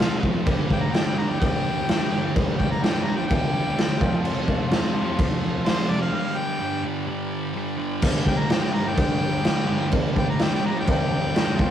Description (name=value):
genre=garage rock duo or trio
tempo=127 BPM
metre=4/4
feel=straight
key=G mixolydian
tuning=A4 = 440 Hz
part: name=bright harmonica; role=melody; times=0.0-11.7 s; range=C5 to Bb5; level=-29 LUFS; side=left 2 dB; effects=overdrive
part: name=combo organ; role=sustained chords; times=0.0-11.7 s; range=F4 to D5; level=-36 LUFS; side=right 1 dB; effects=none
part: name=thick fuzz guitar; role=riff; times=0.0-11.7 s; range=F2 to G3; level=-26 LUFS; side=right 1 dB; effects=distortion
part: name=raw garage drum kit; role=drums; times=0.0-11.7 s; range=crash cymbal, kick drum, snare drum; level=-22 LUFS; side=equal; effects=none
room=light reverb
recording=rough rehearsal-room recording, warm saturation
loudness=-20 LUFS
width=side -10 dB against mid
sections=0.0-8.0 A section; 8.0-11.7 A section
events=break 6.1-8.0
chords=0.5 G; 4.0 F; 6.1 G